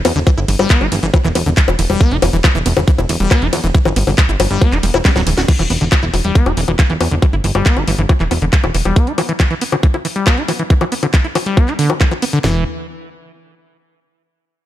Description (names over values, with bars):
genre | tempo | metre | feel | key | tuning
psychedelic trance | 138 BPM | 4/4 | straight | E minor | A4 = 440 Hz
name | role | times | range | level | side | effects
liquid acid bass | riff | 0.0-12.6 s | D3 to F#4 | -19 LUFS | equal | chorus, auto-pan, sidechain pumping, tape echo
plucky analog bass | bass | 0.0-8.9, 12.4-12.6 s | D1 to E2 | -17 LUFS | equal | none
garage drum kit | drums | 0.0-12.4 s | bongos, crash cymbal, handclaps, hi-hat, ride cymbal, snare drum | -19 LUFS | left 4 dB | studio reverb
garage drum kit | drums | 0.3-12.5 s | kick drum, snare drum, toms | -12 LUFS | equal | studio reverb
room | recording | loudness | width
digital ambience | dark, warm production | -12 LUFS | side -13 dB against mid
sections
0.0-5.5 A section; 5.5-12.4 B section; 12.4-14.2 C section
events
drop 0.0-5.5; drum fill 5.0-5.5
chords
0.0 E5; 12.4 N.C.